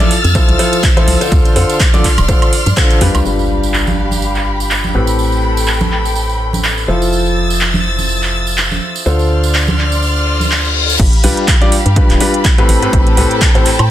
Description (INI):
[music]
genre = piano house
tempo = 124 BPM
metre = 4/4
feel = swing 56% on 16ths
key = unclear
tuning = A4 = 440 Hz
[part]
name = rich studio violin section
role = sustained chords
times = 0.0-13.9 s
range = G4 to A6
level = -20 LUFS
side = left 1 dB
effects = sidechain pumping
[part]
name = clear grand piano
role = riff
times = 0.0-13.7 s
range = A2 to D5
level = -17 LUFS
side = left 1 dB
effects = sidechain pumping, low-pass filter, ping-pong delay
[part]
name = house drum kit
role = drums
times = 0.0-13.9 s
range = crash cymbal, handclaps, hi-hat, woodblock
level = -18 LUFS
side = right 1 dB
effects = low-pass filter on hats, low-pass filter on snare, low-pass filter on perc, low-pass filter on cymbals
[part]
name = congas and tambourine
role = percussion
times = 0.0-11.0 s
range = none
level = -22 LUFS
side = right 5 dB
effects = none
[part]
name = organ-like FM bass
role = bass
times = 0.2-13.9 s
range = D1 to A2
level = -16 LUFS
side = equal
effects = sidechain pumping
[part]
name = electronic kick drum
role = drums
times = 0.3-2.9, 11.0-13.5 s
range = none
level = -12 LUFS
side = equal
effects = none
[part]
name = impact and reverse cymbal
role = sound effects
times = 3.3-5.2, 10.2-11.0 s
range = none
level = -20 LUFS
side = left 3 dB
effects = none
[sound]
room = light reverb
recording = dense, heavily limited modern master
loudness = -10 LUFS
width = side -12 dB against mid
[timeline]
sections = 0.0-3.3 A section; 3.3-11.0 B section; 11.0-13.9 C section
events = band accent 2.8; impact 3.3-5.2; reverse cymbal 10.2-11.0; drop 11.0-13.9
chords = 0.0 Fmaj7; 1.3 Dm7; 3.3 G7; 4.9 Am9; 6.9 Fmaj7; 9.1 Dm7; 11.0 G7; 12.7 Am9